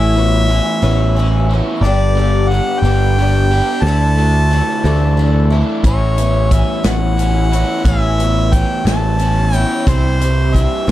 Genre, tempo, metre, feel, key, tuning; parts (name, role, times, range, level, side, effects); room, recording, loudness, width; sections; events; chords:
folk rock and heartland rock; 60 BPM (dotted quarters); 6/8; straight; A mixolydian; A4 = 437 Hz
clear harmonica; melody; 0.0-10.9 s; C5 to A5; -20 LUFS; equal
picked twelve-string acoustic guitar; accompaniment; 0.0-10.9 s; G2 to G4; -23 LUFS; left 5 dB; wide subtle chorus
crunchy overdriven guitar; riff; 0.0-10.9 s; G2 to G4; -20 LUFS; right 1 dB
picked electric bass; bass; 0.0-10.9 s; G1 to D2; -14 LUFS; equal
natural country drum kit; drums; 5.8-10.9 s; hi-hat, kick drum, snare drum; -16 LUFS; equal
light reverb; dark, warm production; -12 LUFS; side -14 dB against mid
0.0-10.9 A section
0.0 Aadd9; 1.8 G; 3.8 Dsus2; 5.9 Aadd9; 9.9 C